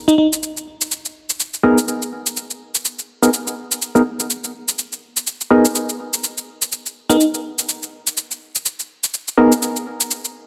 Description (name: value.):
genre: bass house.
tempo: 124 BPM.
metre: 4/4.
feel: swing 57% on 16ths.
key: G# minor.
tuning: A4 = 439 Hz.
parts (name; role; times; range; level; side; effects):
bell-like FM electric piano; melody; 0.1-0.3, 7.1-7.2 s; D#4; -18 LUFS; equal; chorus, delay.
shaker; drums; 0.1-10.3 s; none; -22 LUFS; equal; none.
percussive organ stab; stabs; 1.6-9.5 s; B3 to A#4; -18 LUFS; equal; chorus, delay.
room: moderate plate reverb, RT60 2.7 s.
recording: none.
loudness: -19 LUFS.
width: mono.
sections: 0.0-10.5 A section.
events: none.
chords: 0.0 G#madd9.